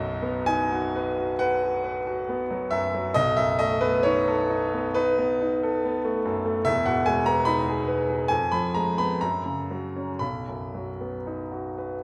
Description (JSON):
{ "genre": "classical, romantic nocturne for solo piano", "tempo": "54-75 BPM", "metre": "4/4", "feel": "rubato", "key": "B major", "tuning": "A4 = 445 Hz", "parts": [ { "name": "clear baby grand piano", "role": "solo", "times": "0.0-12.0 s", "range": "E1 to B5", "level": "-26 LUFS", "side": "equal", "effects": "none" } ], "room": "wet recital hall reverb, RT60 1.7 s", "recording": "none", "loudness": "-25 LUFS", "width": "mono", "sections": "0.0-12.0 A section", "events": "none", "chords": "0.0 B; 3.2 B7; 6.7 Emaj7; 8.3 Fdim; 9.2 F#; 10.2 B", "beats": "0.47 1.38 2.28 | 3.16 4.05 4.96 5.84 | 6.65 7.46 8.30 9.21 | 10.20 11.25" }